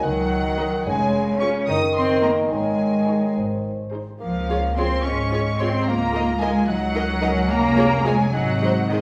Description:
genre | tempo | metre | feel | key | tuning
cinematic, playful, whimsical film cue | 72 BPM (dotted quarters) | 6/8 | straight | Db major | A4 = 443 Hz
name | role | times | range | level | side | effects
muted studio violin section | second line | 0.0-9.0 s | Eb5 to Eb6 | -29 LUFS | equal | none
warm bassoon | accompaniment | 0.0-9.0 s | Db3 to Gb4 | -30 LUFS | equal | none
mellow French horn section | sustained chords | 0.0-9.0 s | Db4 to Db5 | -29 LUFS | equal | none
muted studio cello section | bass | 0.0-9.0 s | Eb3 to Eb4 | -26 LUFS | equal | none
muted studio double bass section | bass | 0.0-9.0 s | F1 to Db2 | -28 LUFS | equal | none
muted symphonic violin section | melody | 0.6-9.0 s | C5 to Eb5 | -35 LUFS | equal | none
muted studio viola section | accompaniment | 0.6-9.0 s | Eb4 to Bb4 | -33 LUFS | equal | none
room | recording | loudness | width
wet recital hall reverb, RT60 1.4 s | recorded in a church or concert hall | -21 LUFS | mono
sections
0.0-9.0 A section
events
none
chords
0.0 Ebm/Db; 0.9 Db/F; 1.7 Ebm/Gb; 2.5 Absus4; 3.4 Ab; 4.2 Db; 5.9 Ebm/Db; 7.5 Db/F; 8.3 Ab7

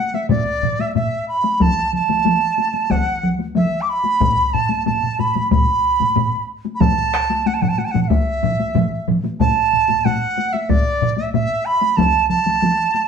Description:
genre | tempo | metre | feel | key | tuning
japanese traditional, taiko drum ensemble | 92 BPM | 4/4 | straight | unclear | A4 = 440 Hz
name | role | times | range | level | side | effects
dizi | melody | 0.0-13.1 s | D5 to D6 | -18 LUFS | right 3 dB | none
taiko ensemble | percussion | 0.1-13.1 s | none | -23 LUFS | left 6 dB | none
taiko ensemble | percussion | 0.3-11.5 s | none | -22 LUFS | equal | none
taiko ensemble | percussion | 0.3-12.1 s | none | -23 LUFS | left 1 dB | none
taiko ensemble | percussion | 1.6-12.8 s | none | -21 LUFS | right 1 dB | none
room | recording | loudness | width
wet studio reverb, RT60 0.8 s | band playing live in one room | -16 LUFS | side -6 dB against mid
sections
0.0-13.1 A section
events
none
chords
none

